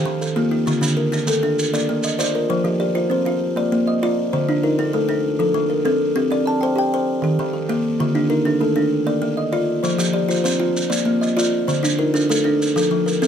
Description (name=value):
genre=southern african traditional, mbira-style interlocking cycle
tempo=131 BPM (dotted quarters)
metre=12/8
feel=straight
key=F mixolydian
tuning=A4 = 440 Hz
part: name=buzzing kalimba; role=arpeggios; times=0.0-13.3 s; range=D3 to A5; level=-20 LUFS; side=left 2 dB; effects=none
part: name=kalimba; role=arpeggios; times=0.0-13.3 s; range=D3 to G5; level=-21 LUFS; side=right 3 dB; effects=none
part: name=maracas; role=percussion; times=0.2-2.3, 9.8-13.3 s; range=none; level=-27 LUFS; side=right 3 dB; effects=none
room=light reverb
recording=close, detailed microphones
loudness=-17 LUFS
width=side -8 dB against mid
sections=0.0-2.5 A section; 2.5-13.3 B section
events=none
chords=0.0 Eb; 0.7 Dm; 1.6 Bb; 2.5 F5; 3.4 Bb; 4.3 D5; 5.2 F; 6.2 C5; 7.1 Eb; 8.0 Dm; 8.9 Bb; 9.8 F5; 10.8 Bb; 11.7 D5; 12.6 F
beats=0.21 | 0.67 1.13 1.59 2.04 | 2.50 2.96 3.42 3.87 | 4.33 4.79 5.25 5.71 | 6.16 6.62 7.08 7.54 | 8.00 8.46 8.92 9.38 | 9.84 10.30 10.76 11.22 | 11.68 12.14 12.60 13.06